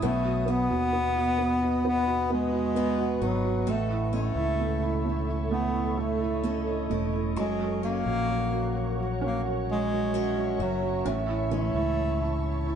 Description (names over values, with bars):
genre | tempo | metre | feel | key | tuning
pop ballad | 65 BPM | 4/4 | straight | unclear | A4 = 440 Hz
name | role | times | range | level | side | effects
felt-muted upright piano | accompaniment | 0.0-12.8 s | E3 to F#4 | -30 LUFS | right 4 dB | none
ethereal airy pad | sustained chords | 0.0-12.8 s | A4 to D#6 | -35 LUFS | left 1 dB | ensemble chorus, built-in reverb
picked steel-string acoustic guitar | arpeggios | 0.0-12.8 s | A2 to B4 | -37 LUFS | left 4 dB | none
fingered electric bass | bass | 0.0-12.8 s | E1 to D#2 | -31 LUFS | left 1 dB | none
clear bass clarinet | melody | 0.1-12.6 s | F#3 to B3 | -29 LUFS | equal | none
room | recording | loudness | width
moderate studio reverb, RT60 0.7 s | band playing live in one room, nothing above 10.4 kHz | -25 LUFS | side -8 dB against mid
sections
0.0-12.8 A section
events
none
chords
0.0 B; 3.7 A; 7.4 F#; 11.1 A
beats
| 0.03 0.94 1.85 2.77 | 3.68 4.59 5.51 6.44 | 7.37 8.30 9.22 10.14 | 11.06 11.97